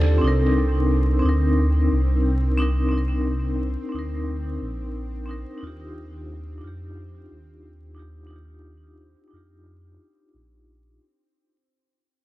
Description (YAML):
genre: trip hop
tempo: 89 BPM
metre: 4/4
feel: swing 58% on 16ths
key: unclear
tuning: A4 = 441 Hz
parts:
  - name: vibraphone with medium hard mallets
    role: accompaniment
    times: 0.0-11.0 s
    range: C4 to Bb4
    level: -26 LUFS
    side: left 1 dB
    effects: tremolo, vintage 12-bit sampler grit, low-pass filter, tape echo
  - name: concert harp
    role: arpeggios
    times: 0.0-2.1 s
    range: D4 to D5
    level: -30 LUFS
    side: right 5 dB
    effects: tape echo
  - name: dark detuned saw bass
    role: bass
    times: 0.0-11.0 s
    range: Bb1 to F2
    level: -23 LUFS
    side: equal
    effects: none
  - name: bowed-like drone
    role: texture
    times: 0.0-11.0 s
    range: C4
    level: -36 LUFS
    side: equal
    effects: built-in reverb, phaser
room: digital ambience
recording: echo-heavy mix, vinyl crackle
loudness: -20 LUFS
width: side -16 dB against mid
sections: 0.0-11.0 A section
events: fade-out 0.0-11.0; filter sweep on vibraphone 0.0-11.0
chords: 0.2 Cm9; 5.6 Ebmaj9